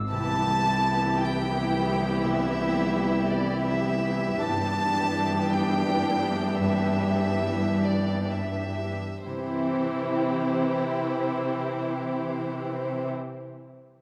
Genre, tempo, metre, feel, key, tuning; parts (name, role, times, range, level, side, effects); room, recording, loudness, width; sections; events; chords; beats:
cinematic, emotional film score for orchestra; 40-58 BPM (dotted quarters); 6/8; rubato; C major; A4 = 440 Hz
warm chamber violin section; melody; 0.1-13.1 s; C5 to A5; -33 LUFS; equal
warm studio violin section; second line; 0.1-13.1 s; D4 to G4; -34 LUFS; equal
warm studio viola section; accompaniment; 0.1-13.1 s; E3 to C4; -33 LUFS; equal
concert harp; arpeggios; 0.1-13.4 s; G2 to B5; -36 LUFS; equal
rich studio cello section; bass; 0.1-13.1 s; C2 to C3; -32 LUFS; equal
wet concert hall reverb, RT60 2.1 s; -26 LUFS; mono
0.1-9.3 A section; 9.3-14.0 B section
slowing down 3.3-9.3
0.1 Cmaj7; 4.4 G6; 9.3 C
| 0.11 1.19 | 2.24 3.29 | 4.38 5.46 | 6.59 7.83 | 9.25 10.69 | 12.10